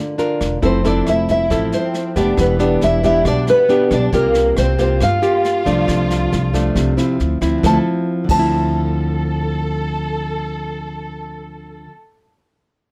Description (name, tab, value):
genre	bossa nova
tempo	137 BPM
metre	4/4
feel	straight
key	D minor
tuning	A4 = 441 Hz
part	nylon-string guitar	accompaniment	0.0-12.0 s	G2 to Bb4	-21 LUFS	equal	none
part	jazz brush drum kit	drums	0.2-8.4 s	crash cymbal, kick drum, rim click, snare drum	-28 LUFS	equal	none
part	upright bass	bass	0.4-11.9 s	E1 to G2	-23 LUFS	equal	none
part	warm studio violin section	second line	0.6-11.8 s	Bb3 to A4	-29 LUFS	equal	none
part	nylon-string guitar	melody	0.7-11.9 s	Bb4 to A5	-20 LUFS	equal	none
room	light reverb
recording	none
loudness	-17 LUFS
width	mono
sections	0.0-7.6 A section; 7.6-11.1 B section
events	none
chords	0.0 Gm7 (rootless); 0.6 Dm9/F; 2.4 Em7; 4.1 C7sus4; 5.9 F6/C; 7.2 Dm9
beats	0.19 | 0.63 1.06 1.50 1.94 | 2.38 2.82 3.25 3.69 | 4.13 4.57 5.01 5.44 | 5.88 6.32 6.76 7.20 | 7.63 8.07 8.51 8.95 | 9.39 9.83 10.26 10.70